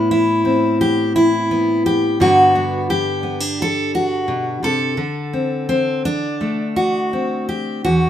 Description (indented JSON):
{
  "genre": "folk, solo fingerstyle acoustic guitar",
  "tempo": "85 BPM",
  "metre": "4/4",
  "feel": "rubato",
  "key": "unclear",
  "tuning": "A4 = 440 Hz",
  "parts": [
    { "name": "fingerpicked steel-string acoustic guitar", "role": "solo", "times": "0.0-8.1 s", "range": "E2 to A4", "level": "-15 LUFS", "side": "equal", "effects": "none" }
  ],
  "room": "light reverb",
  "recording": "minimal, uncompressed stereo recording",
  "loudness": "-16 LUFS",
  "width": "side -10 dB against mid",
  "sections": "0.0-8.1 A section",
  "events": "none",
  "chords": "0.0 Amadd9; 2.2 Gmaj7; 5.0 D7"
}